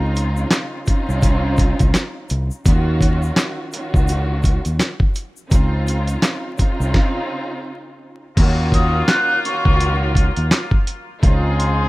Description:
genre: hip hop, boom-bap hip-hop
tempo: 84 BPM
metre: 4/4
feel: swing 58% on 16ths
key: Eb dorian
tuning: A4 = 444 Hz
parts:
  - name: warm studio string section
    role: accompaniment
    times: 0.0-11.9 s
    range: Db3 to Gb4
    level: -25 LUFS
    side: right 1 dB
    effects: cassette tape, high-pass filter, low-pass filter
  - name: fingered electric bass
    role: bass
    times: 0.0-11.9 s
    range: C2 to Eb2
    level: -19 LUFS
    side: equal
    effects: none
  - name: dusty soul sampler-style drum kit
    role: drums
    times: 0.2-11.8 s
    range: crash cymbal, handclaps, hi-hat, kick drum, snare drum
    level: -17 LUFS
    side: equal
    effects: none
  - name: egg shaker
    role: percussion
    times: 0.2-6.9 s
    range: none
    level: -41 LUFS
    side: left 6 dB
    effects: none
  - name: brilliant trumpet section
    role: stabs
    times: 8.4-11.9 s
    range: Bb3 to Ab4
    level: -24 LUFS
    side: left 2 dB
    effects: high-pass filter, low-pass filter, tape echo
  - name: breathy mellow silver concert flute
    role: melody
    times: 8.7-11.9 s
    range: C6 to Gb6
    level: -21 LUFS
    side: equal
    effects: high-pass filter, low-pass filter, tape echo
room: small room ambience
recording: rough home demo mix, vinyl crackle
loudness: -16 LUFS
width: side -19 dB against mid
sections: 0.0-8.4 A section; 8.4-11.9 B section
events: stop 6.9-8.4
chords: 0.0 Dbmaj9; 2.7 Ebm9; 5.5 Dbmaj9; 8.4 Ebm9; 11.2 Dbmaj9

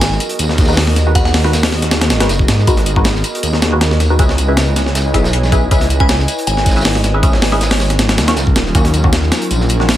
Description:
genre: drum and bass, jungle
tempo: 158 BPM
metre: 4/4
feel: swing 53% on 16ths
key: G# minor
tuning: A4 = 436 Hz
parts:
  - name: glassy synth bell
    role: melody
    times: 0.0-1.3, 6.0-7.0 s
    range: F#5 to G#5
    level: -24 LUFS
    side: equal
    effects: chorus, phaser, dub echo
  - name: airy breathy pad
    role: sustained chords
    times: 0.0-10.0 s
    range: F#3 to G#5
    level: -21 LUFS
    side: right 1 dB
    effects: chorus
  - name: filtered dub chord stab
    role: stabs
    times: 0.0-9.9 s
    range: D#3 to E5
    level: -21 LUFS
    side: left 1 dB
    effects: phaser, analog chorus, cassette tape, dub echo
  - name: detuned saw bass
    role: bass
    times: 0.0-10.0 s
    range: D#1 to G#2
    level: -15 LUFS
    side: equal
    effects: none
  - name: breakbeat sampler-style drum kit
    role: drums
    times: 0.0-10.0 s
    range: hi-hat, kick drum, snare drum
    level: -15 LUFS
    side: equal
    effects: none
  - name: crunchy breakbeat drum kit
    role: drums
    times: 0.0-10.0 s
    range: hi-hat, snare drum, tambourine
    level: -25 LUFS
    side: right 1 dB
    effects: high-pass filter on hats, high-pass filter on snare, high-pass filter on perc, high-pass filter on room
room: small room ambience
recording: none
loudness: -11 LUFS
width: side -13 dB against mid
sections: 0.0-10.0 A section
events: none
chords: 0.0 G#m7; 4.2 C#m7; 8.0 D#m7

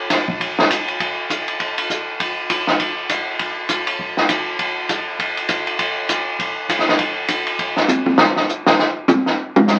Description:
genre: jazz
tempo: 200 BPM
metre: 4/4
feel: swing 60% on 8ths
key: none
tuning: none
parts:
  - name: compact cocktail drum kit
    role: drums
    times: 0.1-9.8 s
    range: hi-hat, kick drum, ride cymbal, snare drum, toms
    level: -19 LUFS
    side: equal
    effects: none
room: moderate club reverb, RT60 0.7 s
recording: very old 78 rpm record, vinyl crackle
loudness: -19 LUFS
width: mono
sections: 0.0-8.2 A section; 8.2-9.8 B section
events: drum fill 7.9; drum solo 8.2-9.8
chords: none

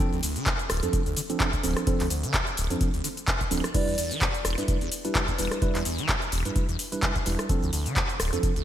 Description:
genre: acid house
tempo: 128 BPM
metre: 4/4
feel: swing 56% on 16ths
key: unclear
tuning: A4 = 439 Hz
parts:
  - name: bell-like tine electric piano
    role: stabs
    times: 0.0-8.5 s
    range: F3 to B4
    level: -31 LUFS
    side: right 2 dB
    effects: phaser, digital delay
  - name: booming analog drum machine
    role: drums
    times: 0.0-8.6 s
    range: cabasa, crash cymbal, handclaps, hi-hat, rim click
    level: -29 LUFS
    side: left 1 dB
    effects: none
  - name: liquid acid bass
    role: riff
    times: 0.1-8.6 s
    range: D1 to E3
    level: -32 LUFS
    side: equal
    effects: phaser, analog chorus
  - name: electronic kick drum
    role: drums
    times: 0.5-8.5 s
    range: none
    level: -28 LUFS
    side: equal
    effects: none
  - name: mellow hollow jazz flute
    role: melody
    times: 3.7-4.1 s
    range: D5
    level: -37 LUFS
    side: right 1 dB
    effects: ping-pong delay
room: light reverb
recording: bright 1980s-style digital production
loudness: -24 LUFS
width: side -11 dB against mid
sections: 0.0-8.6 A section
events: none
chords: 0.0 Dm7; 3.7 Em7; 7.5 Dm7

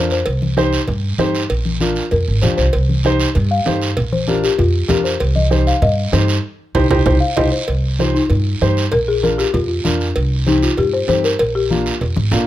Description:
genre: latin, cumbia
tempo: 194 BPM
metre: 4/4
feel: straight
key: C minor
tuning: A4 = 440 Hz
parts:
  - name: folk marimba with soft mallets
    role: melody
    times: 0.0-12.4 s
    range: D4 to F5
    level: -19 LUFS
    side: left 3 dB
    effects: none
  - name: dark upright piano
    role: accompaniment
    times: 0.0-12.5 s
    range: Bb3 to C5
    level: -19 LUFS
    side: right 1 dB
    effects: none
  - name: upright bass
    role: bass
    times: 0.0-12.5 s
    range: Ab1 to G2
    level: -18 LUFS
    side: right 1 dB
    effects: none
  - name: guiro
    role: percussion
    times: 0.1-12.5 s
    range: none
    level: -27 LUFS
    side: right 6 dB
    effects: none
  - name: cowbell and timbales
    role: percussion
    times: 0.3-12.5 s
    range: none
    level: -25 LUFS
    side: right 3 dB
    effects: none
  - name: congas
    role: percussion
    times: 0.4-12.4 s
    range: none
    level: -23 LUFS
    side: left 2 dB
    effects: none
room: little or no reverb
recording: close, detailed microphones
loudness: -14 LUFS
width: side -13 dB against mid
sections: 0.0-7.7 A section; 7.7-12.5 B section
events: marimba solo 0.0-7.7; drum fill 6.4-7.7, 12.2-12.5; band accent 6.4-7.7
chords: 0.3 Cm; 1.5 Bb; 2.7 Cm; 4.0 Bb; 5.2 Cm; 8.9 Bb; 10.2 Cm; 11.4 Bb

